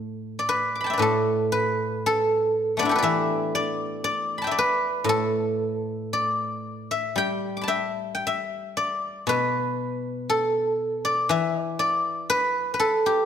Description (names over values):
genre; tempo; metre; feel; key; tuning
chinese traditional, Chinese solo plucked strings; 59 BPM; 2/4; rubato; A shang mode; A4 = 440 Hz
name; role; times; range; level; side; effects
guzheng; solo; 0.0-13.3 s; A2 to D6; -22 LUFS; equal; none
room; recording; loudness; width
moderate recital hall reverb, RT60 1.5 s; none; -22 LUFS; side -8 dB against mid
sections
0.0-13.3 A section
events
none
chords
none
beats
| 1.01 2.03 | 3.04 4.05 | 5.07 6.12 | 7.18 8.23 | 9.27 10.29 | 11.29 12.30